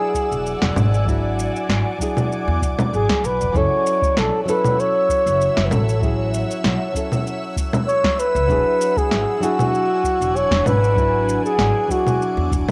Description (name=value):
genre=sunset chillout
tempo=97 BPM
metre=4/4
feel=swing 54% on 16ths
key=unclear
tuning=A4 = 440 Hz
part: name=breathy flugelhorn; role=melody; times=0.0-12.6 s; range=F#4 to C#5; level=-22 LUFS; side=equal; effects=cassette tape, tape echo
part: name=nylon-string guitar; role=accompaniment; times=0.0-12.7 s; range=F#3 to A4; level=-29 LUFS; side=equal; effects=cassette tape
part: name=ethereal airy pad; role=sustained chords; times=0.0-12.7 s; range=D4 to E6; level=-30 LUFS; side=equal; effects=ensemble chorus, built-in reverb, phaser, cassette tape
part: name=electronic kick drum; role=drums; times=0.1-12.6 s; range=none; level=-27 LUFS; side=equal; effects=overdrive, cassette tape
part: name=electronic shaker, snare drum and congas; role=drums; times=0.2-12.7 s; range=none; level=-25 LUFS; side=equal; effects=overdrive, cassette tape
part: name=upright bass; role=bass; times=0.3-12.6 s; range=E1 to E2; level=-24 LUFS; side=equal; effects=none
room=light reverb, small room ambience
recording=home recording on cassette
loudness=-19 LUFS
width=mono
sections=0.0-12.7 A section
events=none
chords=0.0 E9; 3.5 F#m7; 8.5 E9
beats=0.45 | 1.07 1.69 2.31 2.93 | 3.55 4.17 4.78 5.40 | 6.02 6.64 7.26 7.88 | 8.49 9.11 9.73 10.35 | 10.97 11.59 12.21